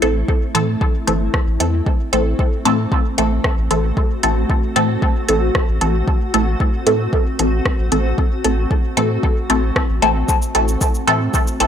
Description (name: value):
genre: dub techno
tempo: 114 BPM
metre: 4/4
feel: straight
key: A dorian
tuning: A4 = 440 Hz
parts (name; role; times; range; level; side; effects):
- granular cloud pad; sustained chords; 0.0-11.7 s; A3 to F#4; -25 LUFS; left 1 dB; built-in reverb, sidechain pumping
- filtered dub chord stab; stabs; 0.0-11.7 s; E3 to A4; -19 LUFS; equal; phaser, sidechain pumping, dub echo
- soft dub sub bass; bass; 0.0-11.7 s; G1 to A2; -20 LUFS; equal; tube saturation, sidechain pumping
- soft vintage rhythm box; drums; 0.0-11.7 s; cabasa, hi-hat, rim click; -22 LUFS; right 1 dB; none
- electronic kick drum; drums; 0.3-11.4 s; none; -18 LUFS; equal; overdrive
room: light reverb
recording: dry, gritty hardware recording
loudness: -15 LUFS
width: side -8 dB against mid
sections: 0.0-11.7 A section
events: none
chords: 0.0 Am